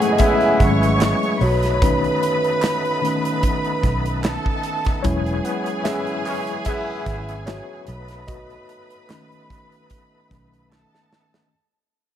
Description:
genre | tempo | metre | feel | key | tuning
lush 1970s-style soul | 74 BPM | 4/4 | swing 54% on 16ths | unclear | A4 = 440 Hz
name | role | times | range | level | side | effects
clear studio string section | second line | 0.0-11.5 s | G#4 to C#6 | -25 LUFS | right 2 dB | none
tine electric piano | accompaniment | 0.0-11.5 s | D#3 to F#5 | -23 LUFS | left 3 dB | overdrive, fast stereo tremolo
overdriven tonewheel organ | sustained chords | 0.0-11.5 s | E3 to G#4 | -30 LUFS | right 1 dB | slow rotary speaker, chorus vibrato
warm horn section | stabs | 0.0-7.4 s | E3 to E4 | -25 LUFS | right 2 dB | none
modern studio drum kit | drums | 0.0-11.5 s | hi-hat, kick drum, snare drum | -23 LUFS | right 1 dB | none
vintage muted fingered electric bass | bass | 0.6-10.8 s | E1 to B1 | -23 LUFS | right 1 dB | none
group handclap | percussion | 1.0-10.9 s | none | -36 LUFS | right 4 dB | none
room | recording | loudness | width
small room ambience | none | -18 LUFS | side -10 dB against mid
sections
0.0-11.5 A section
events
fade-out 0.0-11.5; tine electric piano solo 0.0-11.5; drum fill 10.7-11.5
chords
0.0 E6; 1.4 B7; 5.0 E6; 7.9 B7

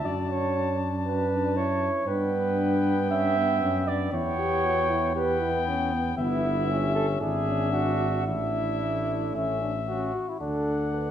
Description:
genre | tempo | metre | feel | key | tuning
classical, brass quintet | 117 BPM | 4/4 | rubato | D major | A4 = 440 Hz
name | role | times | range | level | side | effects
bright trumpet | melody | 0.0-11.1 s | E5 to A5 | -32 LUFS | left 9 dB | none
mellow flugelhorn | second line | 0.0-11.1 s | E4 to E5 | -28 LUFS | right 4 dB | none
bright trombone | accompaniment | 0.0-11.1 s | B3 to F#4 | -34 LUFS | equal | none
clear French horn | accompaniment | 0.0-11.1 s | A3 to A4 | -33 LUFS | left 4 dB | none
dark tuba | bass | 0.0-11.1 s | G1 to G2 | -29 LUFS | right 2 dB | none
room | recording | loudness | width
wet recital hall reverb, RT60 1.4 s | none | -24 LUFS | side -10 dB against mid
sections
0.0-10.4 A section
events
none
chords
0.0 D/F#; 2.1 G; 4.1 Em; 6.2 Em/G; 7.2 E7/G#; 8.3 Asus4; 9.4 A; 10.4 D

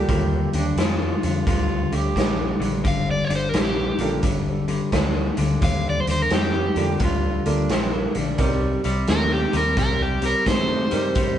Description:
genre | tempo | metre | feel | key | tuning
electric blues shuffle | 87 BPM | 4/4 | swing 65% on 8ths | G minor | A4 = 437 Hz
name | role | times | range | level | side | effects
overdriven semi-hollow guitar | melody | 0.0-11.4 s | G4 to F5 | -24 LUFS | equal | none
warm upright piano | accompaniment | 0.0-11.4 s | Bb3 to F5 | -29 LUFS | right 4 dB | none
electric guitar at the edge of break-up | riff | 0.0-11.4 s | G2 to A3 | -25 LUFS | left 2 dB | none
vintage muted fingered electric bass | bass | 0.0-11.4 s | G1 to A2 | -26 LUFS | equal | none
raw garage drum kit | drums | 0.1-11.4 s | hi-hat, kick drum, snare drum | -24 LUFS | equal | none
growling tenor saxophone | second line | 0.6-2.7, 7.0-9.0 s | G3 to G4 | -29 LUFS | right 2 dB | none
room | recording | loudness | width
moderate stone room reverb, RT60 1.3 s | band playing live in one room, nothing above 10.9 kHz | -19 LUFS | side -10 dB against mid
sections
0.0-11.4 A section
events
none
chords
0.0 Gm9; 8.4 Cm9

